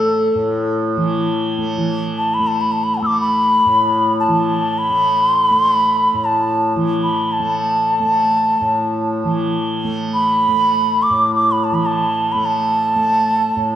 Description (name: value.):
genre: indian classical, Hindustani.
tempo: free time.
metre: none.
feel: none.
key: unclear.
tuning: A4 = 442 Hz.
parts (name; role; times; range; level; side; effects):
bansuri; melody; 0.0-13.8 s; A4 to E6; -15 LUFS; equal; none.
tanpura; drone; 0.0-13.8 s; A2 to A3; -20 LUFS; equal; none.
room: wet scoring stage reverb, RT60 1.8 s.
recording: dark, warm production.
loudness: -14 LUFS.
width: side -11 dB against mid.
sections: 0.0-1.8 A section; 1.8-13.8 A section.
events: none.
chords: none.